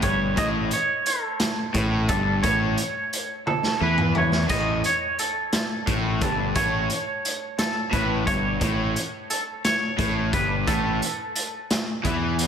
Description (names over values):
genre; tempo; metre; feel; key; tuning
indie rock; 58 BPM (dotted quarters); 6/8; straight; A lydian; A4 = 438 Hz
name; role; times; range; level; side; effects
twangy electric guitar; melody; 0.0-12.3 s; A4 to D#5; -26 LUFS; right 1 dB; harmonic tremolo, slapback echo, tape echo
overdriven semi-hollow guitar; riff; 0.0-12.5 s; G2 to E3; -26 LUFS; equal; none
fuzz fingered electric bass; bass; 0.0-12.5 s; G1 to E2; -28 LUFS; equal; overdrive
raw garage drum kit; drums; 0.0-12.5 s; hi-hat, kick drum, snare drum, splash cymbal, toms; -27 LUFS; equal; none
room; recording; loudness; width
moderate lush hall reverb, RT60 2.6 s; big arena sound; -21 LUFS; side -8 dB against mid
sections
0.0-12.5 A section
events
drum fill 3.5-4.5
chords
0.0 A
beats
| 0.38 1.41 | 2.44 3.46 | 4.49 5.52 | 6.55 7.58 | 8.61 9.64 | 10.67 11.70